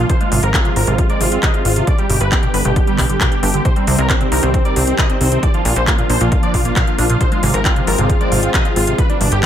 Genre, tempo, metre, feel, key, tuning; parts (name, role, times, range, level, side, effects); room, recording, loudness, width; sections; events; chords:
uplifting trance; 135 BPM; 4/4; straight; A4 = 440 Hz
big supersaw lead; melody; 0.0-9.5 s; C4 to F5; -21 LUFS; equal; sidechain pumping, low-pass filter, ping-pong delay
lush unison pad; sustained chords; 0.0-9.5 s; D3 to D4; -22 LUFS; equal; chorus, phaser, sidechain pumping
liquid acid bass; arpeggios; 0.0-9.5 s; Bb2 to F4; -22 LUFS; right 2 dB; phaser, lush chorus, sidechain pumping, ping-pong delay
plucky analog bass; bass; 0.0-9.5 s; G1 to C2; -18 LUFS; equal; sidechain pumping
electronic kick drum; drums; 0.1-9.5 s; -17 LUFS; equal
techno drum kit; drums; 0.1-9.5 s; handclaps, hi-hat; -21 LUFS; left 1 dB
moderate plate reverb, RT60 1.1 s; dreamy mix soaked in reverb; -13 LUFS; side -10 dB against mid
0.0-9.5 A section
filter sweep on analog synth pad 0.0-9.5
0.1 Fm/Ab; 1.9 G; 3.7 Cm; 5.4 Bb; 7.2 Fm/Ab